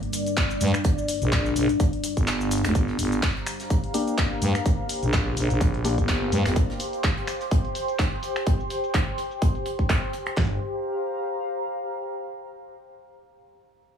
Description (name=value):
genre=bass house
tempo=126 BPM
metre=4/4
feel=swing 56% on 16ths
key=G minor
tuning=A4 = 443 Hz
part: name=deep dark ambient pad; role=sustained chords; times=0.0-2.7 s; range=G3 to D5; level=-29 LUFS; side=left 3 dB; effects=chorus, built-in reverb, sidechain pumping
part: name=big-room dance drum kit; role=drums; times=0.0-10.4 s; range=finger snaps, handclaps, hi-hat, shaker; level=-30 LUFS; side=equal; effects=low-pass filter on hats, studio ambience, low-pass filter on perc, low-pass filter on snare
part: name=soft brush drum kit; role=drums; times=0.1-10.4 s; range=hi-hat, snare drum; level=-38 LUFS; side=right 2 dB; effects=high-pass filter on hats, studio ambience, high-pass filter on snare, high-pass filter on room
part: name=big-room dance drum kit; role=drums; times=0.4-10.5 s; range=handclaps, kick drum, snare drum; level=-24 LUFS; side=equal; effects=studio ambience
part: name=growling FM bass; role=bass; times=0.6-6.5, 10.4-10.6 s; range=F1 to G2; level=-24 LUFS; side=right 1 dB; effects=tube saturation, sidechain pumping
part: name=warbly tape-like pad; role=texture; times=3.2-12.2 s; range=G4 to C6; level=-30 LUFS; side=left 1 dB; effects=chorus, built-in reverb, tremolo, sidechain pumping
part: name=percussive organ stab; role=stabs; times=3.9-6.8 s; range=Bb3 to G4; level=-30 LUFS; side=left 4 dB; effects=chorus, sidechain pumping, dub echo
room=light reverb, digital ambience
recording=small room ambience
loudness=-22 LUFS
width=side -8 dB against mid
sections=0.0-2.8 A section; 2.8-10.4 B section; 10.4-12.3 C section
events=drop 0.0-2.8; kick drops out 2.3-2.8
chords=0.0 Gm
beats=0.37 | 0.85 1.32 1.80 2.27 | 2.75 3.23 3.70 4.18 | 4.66 5.13 5.61 6.08 | 6.56 7.04 7.51 7.99 | 8.47 8.94 9.42 9.89 | 10.37 10.85 11.32 11.80